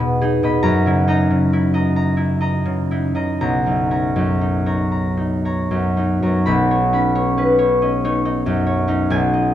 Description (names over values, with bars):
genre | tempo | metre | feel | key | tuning
classical, solo harp piece | 38-47 BPM (dotted quarters) | 6/8 | rubato | B major | A4 = 438 Hz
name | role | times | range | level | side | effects
concert harp | solo | 0.0-9.5 s | B1 to B5 | -16 LUFS | equal | none
room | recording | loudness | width
wet recital hall reverb, RT60 1.5 s | dark, warm production | -16 LUFS | side -11 dB against mid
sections
0.0-6.5 A section; 6.5-9.5 B section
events
none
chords
0.0 Emaj7; 0.6 F#13; 3.4 Bmaj9; 6.5 Badd9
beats
| 0.63 1.95 | 3.41 4.93 | 6.47 7.82 | 9.12